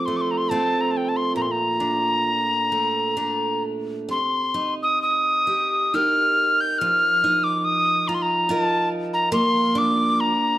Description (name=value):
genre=celtic folk, Celtic slow air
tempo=65-72 BPM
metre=3/4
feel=rubato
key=unclear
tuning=A4 = 440 Hz
part: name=tin whistle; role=melody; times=0.0-10.6 s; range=G5 to G6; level=-20 LUFS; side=equal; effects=none
part: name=picked steel-string acoustic guitar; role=accompaniment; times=0.0-10.6 s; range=Bb2 to Bb4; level=-25 LUFS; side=right 2 dB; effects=none
room=moderate recital hall reverb, RT60 1.6 s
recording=none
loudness=-19 LUFS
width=side -14 dB against mid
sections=0.0-10.6 A section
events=none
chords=0.0 F; 1.4 Bbmaj7; 4.1 Cm7; 6.8 F7sus4; 9.3 Bb